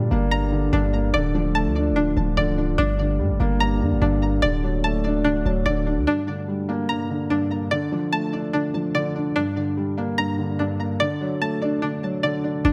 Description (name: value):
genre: hip hop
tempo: 146 BPM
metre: 4/4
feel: half-time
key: G minor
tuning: A4 = 441 Hz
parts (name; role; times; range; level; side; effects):
- dark concert grand piano; accompaniment; 0.0-12.7 s; G2 to D4; -26 LUFS; equal; none
- glass harmonica; sustained chords; 0.0-6.1, 12.6-12.7 s; A3 to D5; -34 LUFS; equal; none
- string-like resonator pluck; arpeggios; 0.0-12.7 s; D4 to Bb5; -28 LUFS; equal; chorus, digital delay
- hard-hitting 808-style bass; bass; 0.0-6.1, 12.6-12.7 s; C1 to Bb2; -26 LUFS; equal; none
room: light reverb, studio reverb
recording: none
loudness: -23 LUFS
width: mono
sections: 0.0-6.1 A section; 6.1-12.6 B section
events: none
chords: 0.0 Gm; 1.1 Dm; 2.8 Gm; 4.4 D; 6.1 Gm; 7.7 Dm; 9.4 Gm; 11.0 D